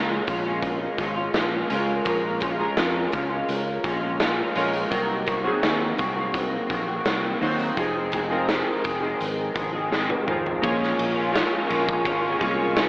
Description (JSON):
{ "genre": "indie pop, bedroom pop", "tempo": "84 BPM", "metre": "4/4", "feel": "straight", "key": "Bb minor", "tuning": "A4 = 440 Hz", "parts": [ { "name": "chorused retro synth keys", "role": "accompaniment", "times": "0.0-12.9 s", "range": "F3 to Db5", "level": "-28 LUFS", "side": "equal", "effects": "cassette tape" }, { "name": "electric guitar through a small old amp", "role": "accompaniment", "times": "0.0-12.9 s", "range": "F2 to Ab4", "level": "-26 LUFS", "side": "equal", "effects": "analog chorus, vibrato effect" }, { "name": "fingered electric bass", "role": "bass", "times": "0.0-12.9 s", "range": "F1 to F2", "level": "-33 LUFS", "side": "equal", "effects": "none" }, { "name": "raw garage drum kit", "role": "drums", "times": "0.3-12.9 s", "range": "hi-hat, kick drum, ride cymbal, snare drum, toms", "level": "-27 LUFS", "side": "equal", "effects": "none" }, { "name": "hollow soft pad", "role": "sustained chords", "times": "10.9-12.9 s", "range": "Bb4 to Db6", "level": "-28 LUFS", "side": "equal", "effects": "ensemble chorus" } ], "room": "moderate studio reverb, RT60 0.7 s", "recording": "AM radio sound", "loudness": "-22 LUFS", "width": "side -23 dB against mid", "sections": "0.0-10.6 A section; 10.6-12.9 B section", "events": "drum fill 9.9-10.6", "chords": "0.0 Bbm7; 4.9 Cm7b5; 7.8 Fm7; 10.6 Bbm7" }